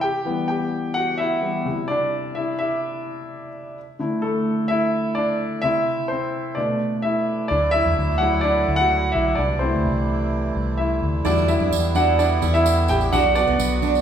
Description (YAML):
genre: piano-driven pop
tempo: 128 BPM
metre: 4/4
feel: straight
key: E minor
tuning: A4 = 440 Hz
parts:
  - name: warm grand piano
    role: accompaniment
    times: 0.0-14.0 s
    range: B2 to G5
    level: -21 LUFS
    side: equal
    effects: none
  - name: accordion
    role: sustained chords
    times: 7.5-14.0 s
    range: C3 to F#4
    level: -29 LUFS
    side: right 4 dB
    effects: light tremolo tuning
  - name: vintage muted fingered electric bass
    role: bass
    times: 7.5-14.0 s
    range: A1 to F#2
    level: -22 LUFS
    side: equal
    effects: none
  - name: fingerpicked steel-string acoustic guitar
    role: riff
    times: 11.2-13.9 s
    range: B3 to E4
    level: -23 LUFS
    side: right 6 dB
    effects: none
  - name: tambourine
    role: percussion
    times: 11.3-14.0 s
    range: none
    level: -33 LUFS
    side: right 7 dB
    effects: none
room: wet recital hall reverb, RT60 1.4 s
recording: recorded in a church or concert hall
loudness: -19 LUFS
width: side -8 dB against mid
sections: 0.0-7.5 A section; 7.5-14.0 B section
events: grand piano solo 0.0-7.5, 7.5-14.0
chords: 0.0 Em; 1.7 Cadd9; 3.8 Dsus2; 5.6 C; 6.6 Bm7; 7.5 Dadd9; 9.4 Am/C; 11.3 Em7; 13.1 Bm